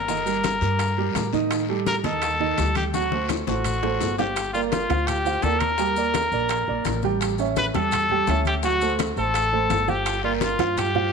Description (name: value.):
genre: latin, salsa.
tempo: 168 BPM.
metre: 4/4.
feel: straight.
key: G minor.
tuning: A4 = 440 Hz.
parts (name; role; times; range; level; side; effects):
clear trumpet; melody; 0.0-11.1 s; F4 to B4; -24 LUFS; left 3 dB; none.
dark baby grand piano; accompaniment; 0.0-11.1 s; Eb3 to G5; -26 LUFS; right 8 dB; none.
upright bass; bass; 0.0-11.1 s; G1 to A2; -28 LUFS; left 2 dB; none.
bongos; percussion; 0.1-11.1 s; none; -34 LUFS; left 15 dB; none.
congas; percussion; 0.1-11.1 s; none; -32 LUFS; left 12 dB; none.
guiro; percussion; 0.1-4.4, 10.1-11.1 s; none; -38 LUFS; left 15 dB; none.
maracas; percussion; 0.1-11.0 s; none; -39 LUFS; left 16 dB; none.
timbales; percussion; 0.4-11.0 s; none; -35 LUFS; right 11 dB; none.
room: moderate echo chamber reverb, RT60 2.0 s.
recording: 1960s-style stereo with parts hard left and right.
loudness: -20 LUFS.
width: side -5 dB against mid.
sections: 0.0-4.4 A section; 4.4-11.1 A section.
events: drum fill 2.9-4.4.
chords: 0.1 Eb/G; 1.5 Ebmaj7#11; 2.9 D7; 4.4 Gm7; 5.8 Ebmaj7; 7.2 A7; 8.6 D7; 10.1 Gm7.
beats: | 0.09 0.44 0.80 1.16 | 1.51 1.87 2.23 2.58 | 2.94 3.30 3.65 4.01 | 4.37 4.72 5.08 5.43 | 5.79 6.14 6.50 6.86 | 7.21 7.57 7.92 8.28 | 8.64 8.99 9.35 9.70 | 10.06 10.42 10.77.